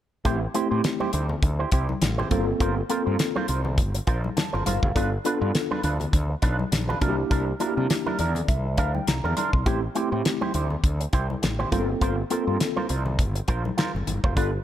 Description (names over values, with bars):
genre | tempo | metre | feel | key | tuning
early-eighties boogie funk | 102 BPM | 4/4 | swing 56% on 16ths | G dorian | A4 = 440 Hz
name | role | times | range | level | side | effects
mellow tine electric piano | accompaniment | 0.2-14.5 s | A3 to C6 | -28 LUFS | left 1 dB | medium stereo tremolo
electric guitar with an envelope filter | riff | 0.2-14.6 s | D4 to C5 | -30 LUFS | right 4 dB | analog chorus
fretless electric bass | bass | 0.3-14.6 s | F1 to C3 | -26 LUFS | equal | none
damped 70s drum kit | drums | 0.3-14.5 s | hi-hat, kick drum, snare drum | -25 LUFS | equal | none
congas | percussion | 0.3-14.5 s | none | -35 LUFS | left 5 dB | none
room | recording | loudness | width
light reverb | none | -22 LUFS | side -11 dB against mid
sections
0.3-14.6 A section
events
tine electric piano fill 4.1-5.0, 7.9-9.7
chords
0.3 Am7; 2.3 Gm11; 5.0 G7; 7.0 C9; 9.7 Am7; 11.7 Gm11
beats
| 0.25 0.84 1.43 2.02 | 2.60 3.19 3.78 4.37 | 4.96 5.54 6.13 6.72 | 7.31 7.90 8.49 9.07 | 9.66 10.25 10.84 11.43 | 12.02 12.60 13.19 13.78 | 14.37